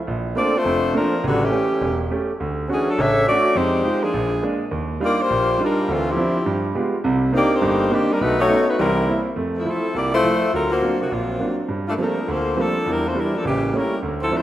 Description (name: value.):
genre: jazz.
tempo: 206 BPM.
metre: 4/4.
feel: swing 61% on 8ths.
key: Bb major, F major from 9.4 s.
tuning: A4 = 440 Hz.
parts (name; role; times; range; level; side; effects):
clear concert grand piano; accompaniment; 0.1-14.4 s; E1 to G4; -22 LUFS; right 2 dB; none.
warm saxophone section; melody; 0.4-14.4 s; C3 to E5; -20 LUFS; left 1 dB; none.
room: wet lush hall reverb, RT60 2.3 s.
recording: rough home demo mix.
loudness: -18 LUFS.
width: side -13 dB against mid.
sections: 0.1-9.4 A section; 9.4-14.4 B section.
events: none.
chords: 0.1 Bbmaj9; 1.2 A7; 2.4 Dmaj7; 3.6 Fm9; 4.1 Bb7; 4.7 Ebmaj9; 5.9 Dm9; 6.5 G7b9; 7.0 Cm9; 8.2 B9; 8.8 C7; 9.4 Fmaj7; 10.5 D7alt; 11.7 Gm11; 12.9 Em7b5; 13.4 A7b9.